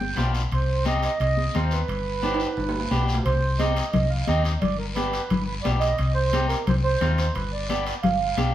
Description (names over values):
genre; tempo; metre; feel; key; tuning
latin, cumbia; 176 BPM; 4/4; straight; C harmonic minor; A4 = 441 Hz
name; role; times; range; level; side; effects
mellow accordion; melody; 0.0-8.5 s; Bb4 to G5; -27 LUFS; right 5 dB; none
hollow-body short-scale fingered electric bass; bass; 0.0-8.5 s; G1 to Eb2; -25 LUFS; left 1 dB; none
congas; percussion; 0.0-8.5 s; none; -28 LUFS; left 3 dB; none
electric guitar at the edge of break-up; accompaniment; 0.2-8.5 s; B3 to G4; -30 LUFS; left 4 dB; none
guiro; percussion; 0.2-8.5 s; none; -37 LUFS; left 3 dB; none
timbales; percussion; 0.2-8.5 s; none; -34 LUFS; right 2 dB; none
room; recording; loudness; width
wet studio reverb, RT60 0.8 s; band playing live in one room; -21 LUFS; side -12 dB against mid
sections
0.0-3.3 A section; 3.3-8.5 A section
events
drum fill 2.2-3.3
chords
0.0 G7; 0.5 Cm; 1.9 G; 3.3 Cm; 4.6 G; 6.0 Cm; 7.4 G7